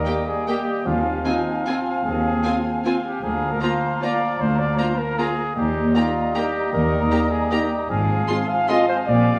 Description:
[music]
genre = classical, orchestral ballroom waltz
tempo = 153 BPM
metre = 3/4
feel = uneven beats, rubato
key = Eb major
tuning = A4 = 443 Hz
[part]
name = mellow clarinet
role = second line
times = 0.0-9.4 s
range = Bb3 to C4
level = -34 LUFS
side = equal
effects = none
[part]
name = mellow small flute group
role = second line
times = 0.0-9.4 s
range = G5 to Bb5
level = -35 LUFS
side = equal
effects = none
[part]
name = warm oboe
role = second line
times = 0.0-9.4 s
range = Eb5 to F5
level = -32 LUFS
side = equal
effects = none
[part]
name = mellow bassoon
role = accompaniment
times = 0.0-9.4 s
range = F3 to G3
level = -31 LUFS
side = equal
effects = none
[part]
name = mellow trumpet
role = stabs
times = 0.0-9.4 s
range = Eb4 to F5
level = -28 LUFS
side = equal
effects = none
[part]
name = rich chamber violin section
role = melody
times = 0.1-8.8 s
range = G5 to C6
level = -37 LUFS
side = equal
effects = none
[part]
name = warm studio violin section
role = second line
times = 0.1-8.8 s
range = F4 to G4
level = -34 LUFS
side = equal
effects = none
[part]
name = warm symphonic viola section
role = accompaniment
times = 0.1-8.8 s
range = Ab3 to C4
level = -33 LUFS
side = equal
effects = none
[part]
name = mellow French horn section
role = sustained chords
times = 0.1-8.8 s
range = Bb3 to G4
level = -33 LUFS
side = equal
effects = none
[part]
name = rich chamber double bass section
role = bass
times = 0.9-9.4 s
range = Ab1 to Eb2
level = -29 LUFS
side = equal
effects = none
[part]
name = rich symphonic cello section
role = bass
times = 0.9-9.4 s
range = D2 to Bb2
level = -29 LUFS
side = equal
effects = none
[part]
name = timpani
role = percussion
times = 0.9-1.4 s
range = Eb3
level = -34 LUFS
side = equal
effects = none
[sound]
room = wet recital hall reverb, RT60 1.6 s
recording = studio reverb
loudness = -21 LUFS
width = mono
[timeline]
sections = 0.0-9.4 A section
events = none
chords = 0.0 Eb; 0.9 Fm7/Eb; 3.2 Bb/D; 5.6 Eb; 7.9 Fm/Ab

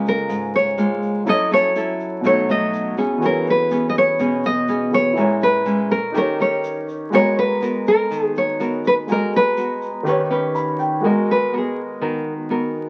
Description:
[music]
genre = bossa nova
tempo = 123 BPM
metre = 4/4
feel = straight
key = G# minor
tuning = A4 = 438 Hz
[part]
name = nylon-string guitar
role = melody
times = 0.0-11.8 s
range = G#4 to D#5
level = -21 LUFS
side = equal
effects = none
[part]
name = nylon-string guitar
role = accompaniment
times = 0.0-12.9 s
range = G#2 to B4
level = -25 LUFS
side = equal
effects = none
[part]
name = warm baby grand piano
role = accompaniment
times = 0.0-12.9 s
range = B2 to B5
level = -27 LUFS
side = equal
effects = none
[part]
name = egg shaker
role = percussion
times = 0.1-11.0 s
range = none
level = -56 LUFS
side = equal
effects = none
[sound]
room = light reverb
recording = very old 78 rpm record, vinyl crackle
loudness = -19 LUFS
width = mono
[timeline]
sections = 0.0-11.0 A section; 11.0-12.9 B section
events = grand piano fill 10.3-11.0; nylon-string guitar solo 11.0-12.9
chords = 0.0 C#6; 1.3 F#m7; 2.2 B7; 3.2 E6; 5.2 A#m7b5; 6.1 D#7; 7.1 G#m9; 10.1 D#7b13; 11.0 G#m9

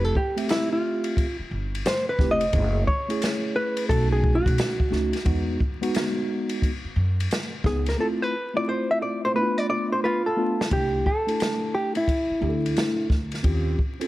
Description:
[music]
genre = hip hop, jazz-hop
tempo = 88 BPM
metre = 4/4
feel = swing 65% on 16ths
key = unclear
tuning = A4 = 440 Hz
[part]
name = hollow-body jazz guitar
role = melody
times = 0.0-13.1 s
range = E4 to E5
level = -25 LUFS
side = equal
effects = none
[part]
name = mellow tine electric piano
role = accompaniment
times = 0.0-14.1 s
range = G#3 to E5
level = -28 LUFS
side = equal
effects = medium stereo tremolo
[part]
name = upright bass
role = bass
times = 0.0-13.7 s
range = F1 to F#2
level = -25 LUFS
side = equal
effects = none
[part]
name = open jazz drum kit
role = drums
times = 0.2-14.1 s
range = hi-hat, kick drum, ride cymbal, snare drum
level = -27 LUFS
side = equal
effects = none
[sound]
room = light reverb, small room ambience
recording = vinyl crackle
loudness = -22 LUFS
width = side -16 dB against mid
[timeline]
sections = 0.0-10.7 A section; 10.7-14.1 B section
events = hollow-body jazz guitar solo 0.0-10.7; drums muted 8.0-10.7; drum fill 9.4-10.7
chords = 0.0 Fmaj9; 2.5 F#m7; 3.9 B9; 5.3 Emaj7 (rootless); 8.0 Dm13/A; 9.4 Bm7b5/A; 10.7 C69 (rootless); 13.4 Eb13

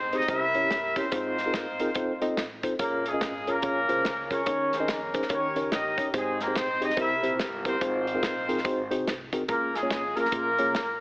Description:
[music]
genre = uptempo gospel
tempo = 144 BPM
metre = 4/4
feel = swing 63% on 8ths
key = Ab major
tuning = A4 = 439 Hz
[part]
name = dark horn section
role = melody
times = 0.0-11.0 s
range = Ab3 to E5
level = -27 LUFS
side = equal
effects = none
[part]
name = mellow tine electric piano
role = accompaniment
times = 0.0-10.8 s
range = Ab2 to Eb5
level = -29 LUFS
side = equal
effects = medium stereo tremolo
[part]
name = upright bass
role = bass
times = 0.0-11.0 s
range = F1 to F2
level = -43 LUFS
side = equal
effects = none
[part]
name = natural country drum kit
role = drums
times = 0.1-10.9 s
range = hi-hat, kick drum, snare drum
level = -33 LUFS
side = equal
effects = none
[sound]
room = light reverb, small room reverb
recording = heavily compressed radio sound, AM radio sound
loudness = -25 LUFS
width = side -26 dB against mid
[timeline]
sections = 0.0-11.0 A section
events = none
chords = 0.3 C7b9; 1.1 Fm7/Ab; 2.0 F7; 2.8 Bbm7; 4.5 Eb7sus4; 5.3 Eb7; 6.1 Abmaj7; 7.0 C7; 7.8 Fm7/Ab; 8.6 Ab7; 9.5 Db6

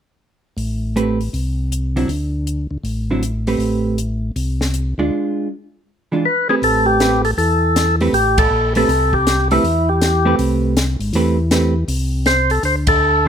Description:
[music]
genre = soul jazz organ trio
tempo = 159 BPM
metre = 4/4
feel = swing 64% on 8ths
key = A minor from 6.6 s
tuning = A4 = 438 Hz
[part]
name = tonewheel organ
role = bass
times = 0.6-13.3 s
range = G#1 to E2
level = -19 LUFS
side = equal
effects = chorus vibrato, slow rotary speaker
[part]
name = compact cocktail drum kit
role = drums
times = 0.6-12.9 s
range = hi-hat, kick drum, ride cymbal, snare drum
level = -22 LUFS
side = left 1 dB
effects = none
[part]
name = vintage hollow-body jazz guitar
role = accompaniment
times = 1.0-13.3 s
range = D3 to B4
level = -19 LUFS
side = right 3 dB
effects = none
[part]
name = percussive tonewheel organ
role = melody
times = 6.3-13.3 s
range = E4 to C5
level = -16 LUFS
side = left 1 dB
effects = slow rotary speaker
[sound]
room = light reverb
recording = close, detailed microphones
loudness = -15 LUFS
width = side -8 dB against mid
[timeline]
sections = 0.6-6.6 A section; 6.6-13.3 B section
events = band accent 8.3, 12.8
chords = 0.6 Am9; 5.1 E7b9 (rootless); 6.6 Am9; 12.6 D7(no3)

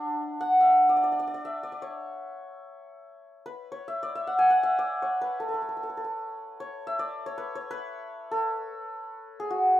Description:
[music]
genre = indian classical, Hindustani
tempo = free time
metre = none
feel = none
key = D raga yaman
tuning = A4 = 445 Hz
[part]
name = santur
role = solo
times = 0.0-9.8 s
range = D4 to G#5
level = -25 LUFS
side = equal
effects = none
[sound]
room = little or no reverb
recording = dry, close 1970s-style studio recording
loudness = -24 LUFS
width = side -14 dB against mid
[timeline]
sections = 0.1-9.8 A section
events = none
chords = none

